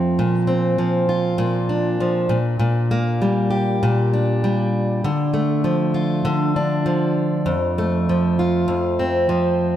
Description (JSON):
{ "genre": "acoustic pop", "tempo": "99 BPM", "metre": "4/4", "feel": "straight", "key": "Bb major", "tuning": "A4 = 442 Hz", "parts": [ { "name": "fingerpicked plugged-in steel-string acoustic guitar", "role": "solo", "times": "0.0-9.8 s", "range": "F2 to G4", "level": "-17 LUFS", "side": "equal", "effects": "none" } ], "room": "moderate plate reverb, RT60 2.6 s", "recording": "heard from further back in the room", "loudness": "-17 LUFS", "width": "side -11 dB against mid", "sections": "0.0-9.8 A section", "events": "none", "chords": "0.2 Bbadd9; 2.3 Gm/Bb; 5.0 Dm; 7.5 F" }